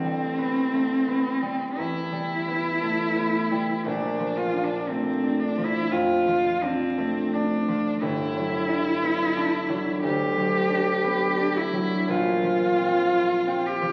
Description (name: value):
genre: classical, impressionist duo for cello and harp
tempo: 58 BPM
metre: 4/4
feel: rubato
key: unclear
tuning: A4 = 443 Hz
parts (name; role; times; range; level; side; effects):
- rich cello; melody; 0.0-13.9 s; C4 to G4; -27 LUFS; equal; none
- concert harp; accompaniment; 0.0-13.9 s; G1 to F4; -29 LUFS; equal; none
room: wet recital hall reverb, RT60 1.8 s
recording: very old 78 rpm record, vinyl crackle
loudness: -25 LUFS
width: mono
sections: 0.0-13.9 A section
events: none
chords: 0.0 Am9; 3.9 Bbmaj7; 8.0 Gmaj7; 12.1 Bbadd9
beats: 0.74 1.78 2.82 | 3.86 4.89 5.92 6.99 | 8.02 9.03 10.03 11.05 | 12.09 13.14